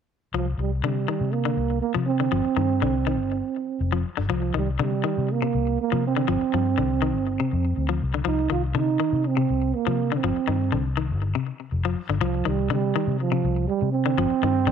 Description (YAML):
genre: afrobeat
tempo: 121 BPM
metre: 4/4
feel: straight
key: C minor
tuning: A4 = 441 Hz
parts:
  - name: semi-hollow electric guitar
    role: arpeggios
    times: 0.3-14.7 s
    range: C3 to F3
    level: -28 LUFS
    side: left 12 dB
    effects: tape echo
  - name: vintage muted fingered electric bass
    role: bass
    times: 0.3-14.7 s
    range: F1 to C3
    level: -26 LUFS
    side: left 2 dB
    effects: none
  - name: trombone with bucket mute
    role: melody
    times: 0.4-14.7 s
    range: F3 to F4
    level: -25 LUFS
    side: right 10 dB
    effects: none
room: light reverb, studio reverb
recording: 1960s-style stereo with parts hard left and right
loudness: -22 LUFS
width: side -8 dB against mid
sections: 0.3-14.7 A section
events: none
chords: 0.3 C9sus4; 2.3 G7sus4; 4.3 Cm11; 6.3 G7sus4; 8.3 Cm; 10.2 G7sus4; 12.2 Cm; 14.2 G7sus4